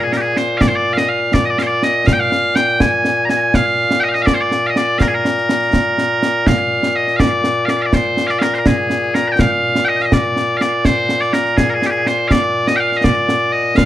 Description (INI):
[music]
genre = scottish traditional, Scottish pipe music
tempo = 82 BPM (dotted quarters)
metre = 6/8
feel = straight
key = Bb mixolydian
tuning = A4 = 442 Hz
[part]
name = loud bright bagpipes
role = melody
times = 0.0-13.9 s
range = Bb2 to Bb5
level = -15 LUFS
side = left 1 dB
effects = slapback echo
[part]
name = concert snare drum and concert bass drum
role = drums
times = 0.1-13.9 s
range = none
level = -17 LUFS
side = right 1 dB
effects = none
[sound]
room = light reverb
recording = dry, close 1970s-style studio recording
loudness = -13 LUFS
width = side -13 dB against mid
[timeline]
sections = 0.0-6.5 A section; 6.5-13.9 A section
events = none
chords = none